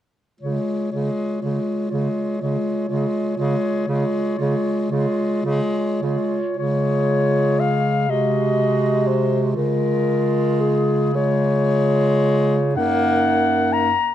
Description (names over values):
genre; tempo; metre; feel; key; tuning
classical, lyrical piece for single-reed quartet; 34-42 BPM (dotted quarters); 6/8; rubato; Db major; A4 = 444 Hz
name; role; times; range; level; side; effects
dark clarinet; melody; 0.4-14.1 s; Ab4 to Bb5; -23 LUFS; left 4 dB; none
mellow clarinet; second line; 0.4-13.9 s; Eb4 to Gb4; -26 LUFS; right 7 dB; none
clear tenor saxophone; accompaniment; 0.4-13.9 s; Ab3 to Bb3; -24 LUFS; left 2 dB; none
clear bass clarinet; bass; 0.4-13.9 s; Gb2 to Db3; -23 LUFS; right 2 dB; none
room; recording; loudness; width
light reverb; close, detailed microphones; -18 LUFS; side -11 dB against mid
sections
0.4-6.6 A section; 6.6-14.1 B section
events
none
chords
0.4 Db; 8.1 Ab7/C; 9.5 Db; 12.8 Gb6